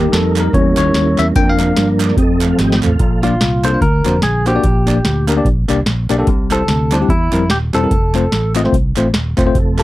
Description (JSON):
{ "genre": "uptempo gospel", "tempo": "147 BPM", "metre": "4/4", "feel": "swing 58% on 8ths", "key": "Bb major", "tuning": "A4 = 439 Hz", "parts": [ { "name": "bell-like tine electric piano", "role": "accompaniment", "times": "0.0-9.8 s", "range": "Bb2 to G5", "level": "-16 LUFS", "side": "left 3 dB", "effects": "fast stereo tremolo" }, { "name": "tonewheel organ", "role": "sustained chords", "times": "0.0-3.2, 9.5-9.8 s", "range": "F3 to G5", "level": "-18 LUFS", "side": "right 4 dB", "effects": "slow rotary speaker, chorus vibrato" }, { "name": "fingered electric bass", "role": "bass", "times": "0.0-9.8 s", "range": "Eb1 to G2", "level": "-17 LUFS", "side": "equal", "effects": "none" }, { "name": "booming analog drum machine", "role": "drums", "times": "0.1-9.8 s", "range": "hi-hat, kick drum, snare drum, toms", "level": "-17 LUFS", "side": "equal", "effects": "overdrive" }, { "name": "group handclap", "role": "percussion", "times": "0.4-9.8 s", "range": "none", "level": "-26 LUFS", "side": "right 7 dB", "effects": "none" }, { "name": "clean electric guitar", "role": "melody", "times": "3.2-9.8 s", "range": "D4 to C5", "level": "-18 LUFS", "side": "equal", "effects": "none" } ], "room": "light reverb", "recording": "dry, close 1970s-style studio recording", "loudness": "-12 LUFS", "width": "side -16 dB against mid", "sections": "0.0-3.0 A section; 3.0-9.8 B section", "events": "tine electric piano solo 0.0-3.0; tonewheel organ fill 1.8-3.0; drum fill 2.6-3.0", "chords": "0.0 Eb; 0.5 Edim7; 1.4 Bb/F; 2.2 F; 3.0 Bb; 3.8 D7alt; 4.6 Gm/Bb; 6.3 C; 7.9 F", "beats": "0.13 0.54 0.95 | 1.36 1.77 2.18 2.59 | 3.00 3.41 3.82 4.23 | 4.63 5.04 5.46 5.86 | 6.27 6.68 7.09 7.50 | 7.91 8.32 8.73 9.14 | 9.55" }